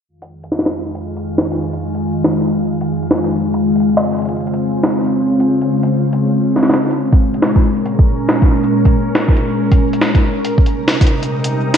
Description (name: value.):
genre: IDM.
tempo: 139 BPM.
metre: 4/4.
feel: swing 62% on 16ths.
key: F minor.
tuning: A4 = 442 Hz.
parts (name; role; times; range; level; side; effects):
glassy FM pad; sustained chords; 0.7-11.8 s; F2 to Bb4; -16 LUFS; left 1 dB; ensemble chorus, built-in reverb.
jungle sampler-style drum kit; drums; 0.2-11.8 s; hi-hat, snare drum; -18 LUFS; right 1 dB; low-pass filter on hats, low-pass filter on snare, gated reverb, digital delay.
electronic kick drum; drums; 7.1-11.1 s; none; -12 LUFS; equal; none.
room: wet lush hall reverb, RT60 1.8 s, digital ambience.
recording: bright 1980s-style digital production, low-pass filter.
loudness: -13 LUFS.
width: side -8 dB against mid.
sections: 0.1-11.8 A section.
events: filter sweep on drum 0.1-11.8; filter sweep on ambient pad 0.1-11.8; filter sweep 0.1-11.8.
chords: 0.1 Fm7; 3.5 Dbmaj7; 7.0 Bbm7; 10.4 Cm7.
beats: | 0.09 0.52 0.95 1.38 | 1.81 2.24 2.68 3.11 | 3.54 3.97 4.40 4.83 | 5.27 5.70 6.13 6.56 | 6.99 7.42 7.86 8.29 | 8.72 9.15 9.58 10.01 | 10.45 10.88 11.31 11.74.